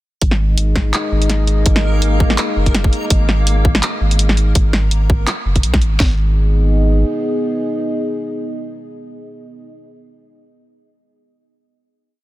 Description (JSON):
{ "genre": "half-time drum and bass", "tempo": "166 BPM", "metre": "4/4", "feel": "swing 55% on 16ths, half-time", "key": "G# minor", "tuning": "A4 = 440 Hz", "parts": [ { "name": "dark analog pad", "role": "sustained chords", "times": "0.2-9.7 s", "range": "G#3 to D#5", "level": "-22 LUFS", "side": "left 1 dB", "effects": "chorus, sidechain pumping" }, { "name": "saturated sub bass", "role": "bass", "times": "0.2-7.0 s", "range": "F#1 to B1", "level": "-15 LUFS", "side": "equal", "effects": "none" }, { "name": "drum and bass drum kit", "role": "drums", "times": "0.2-6.1 s", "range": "kick drum, snare drum", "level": "-15 LUFS", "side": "equal", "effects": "none" }, { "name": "drum and bass drum kit", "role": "drums", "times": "0.2-5.9 s", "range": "handclaps, hi-hat, snare drum", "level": "-20 LUFS", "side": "equal", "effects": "soft clipping on snare" }, { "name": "backwards swelling texture", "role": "texture", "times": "0.6-4.6 s", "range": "A#3 to A#4", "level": "-28 LUFS", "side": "left 1 dB", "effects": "built-in reverb" } ], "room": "little or no reverb", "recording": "dense, heavily limited modern master", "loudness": "-13 LUFS", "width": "side -16 dB against mid", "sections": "0.2-6.0 drop; 6.0-8.9 final chord", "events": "drop 0.2-6.0", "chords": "0.2 G#5; 6.0 G#m" }